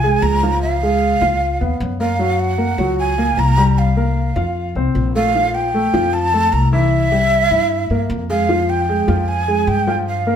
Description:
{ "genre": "Afro-Cuban jazz", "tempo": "152 BPM", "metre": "4/4", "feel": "straight", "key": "F minor", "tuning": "A4 = 441 Hz", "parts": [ { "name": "breathy mellow jazz flute", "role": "melody", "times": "0.0-10.4 s", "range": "E5 to Bb5", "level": "-18 LUFS", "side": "right 1 dB", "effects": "plate reverb" }, { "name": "warm upright piano", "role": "accompaniment", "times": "0.0-10.4 s", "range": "E3 to F5", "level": "-19 LUFS", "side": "equal", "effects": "none" }, { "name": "upright bass", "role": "bass", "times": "0.0-10.4 s", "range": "Bb1 to G2", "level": "-19 LUFS", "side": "left 1 dB", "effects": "none" } ], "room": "wet studio reverb, RT60 0.8 s", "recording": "heard from further back in the room", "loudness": "-14 LUFS", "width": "side -8 dB against mid", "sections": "0.0-10.4 A section", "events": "none", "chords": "0.0 Fm; 0.6 Db7; 2.2 Gbadd9; 3.8 C5; 4.6 F; 5.4 Bbsus2; 6.9 C7b13; 8.5 Fmadd9", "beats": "0.23 | 0.62 1.01 1.41 1.80 | 2.20 2.59 2.99 3.38 | 3.78 4.17 4.56 4.96 | 5.35 5.74 6.14 6.53 | 6.92 7.32 7.71 8.10 | 8.50 8.89 9.28 9.68 | 10.07" }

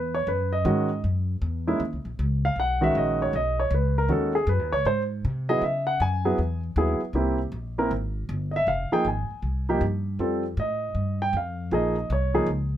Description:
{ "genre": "jazz piano trio", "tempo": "157 BPM", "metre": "4/4", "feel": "swing 65% on 8ths", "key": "F minor from 8.7 s", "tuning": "A4 = 440 Hz", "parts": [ { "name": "warm grand piano", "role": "melody", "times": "0.0-12.5 s", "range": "D#3 to G#5", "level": "-24 LUFS", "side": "right 1 dB", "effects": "none" }, { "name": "upright bass", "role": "bass", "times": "0.0-12.8 s", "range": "F1 to C#3", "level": "-27 LUFS", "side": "equal", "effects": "none" } ], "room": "light reverb", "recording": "none", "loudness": "-23 LUFS", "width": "side -11 dB against mid", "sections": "0.0-8.7 A section; 8.7-12.8 A section", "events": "grand piano solo 0.0-12.8", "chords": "0.0 G#5; 1.0 F#7(no3); 2.6 Bmaj7; 4.1 B13; 4.9 G#; 5.6 C#m9; 7.2 C7; 8.7 Fm; 10.2 F7; 11.7 Bbm9", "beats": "0.27 0.65 | 1.04 1.42 1.80 2.19 | 2.57 2.95 3.33 3.71 | 4.10 4.48 4.86 5.24 | 5.62 6.01 6.39 6.77 | 7.15 7.53 7.91 8.29 | 8.67 9.05 9.44 9.82 | 10.20 10.58 10.96 11.34 | 11.72 12.10 12.48" }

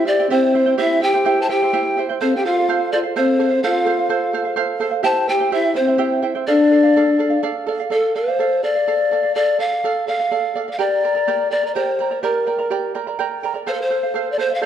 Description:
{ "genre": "andean folk, Andean ensemble", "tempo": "84 BPM (dotted quarters)", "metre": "6/8", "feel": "straight", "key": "D minor", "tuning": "A4 = 441 Hz", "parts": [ { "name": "mellow hollow pan flute", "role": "melody", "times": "0.0-14.7 s", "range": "A4 to A5", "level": "-19 LUFS", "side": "left 1 dB", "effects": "none" }, { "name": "breathy mellow pan flute", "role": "second line", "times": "0.0-7.4, 13.7-14.7 s", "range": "C4 to F5", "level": "-19 LUFS", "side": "left 2 dB", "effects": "none" }, { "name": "charango", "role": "accompaniment", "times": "0.0-14.7 s", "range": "E4 to Bb5", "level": "-22 LUFS", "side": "right 6 dB", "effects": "none" } ], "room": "moderate recital hall reverb, RT60 1.4 s", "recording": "dark, warm production", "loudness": "-16 LUFS", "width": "side -10 dB against mid", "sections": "0.0-7.9 A section; 7.9-14.7 B section", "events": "none", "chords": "0.0 C; 2.2 F; 5.1 C; 6.5 Dm; 10.8 Gm; 13.7 F", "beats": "0.07 | 0.78 1.49 | 2.20 2.91 | 3.63 4.34 | 5.06 5.77 | 6.49 7.21 | 7.92 8.64 | 9.36 10.08 | 10.80 11.52 | 12.24 12.96 | 13.67 14.39" }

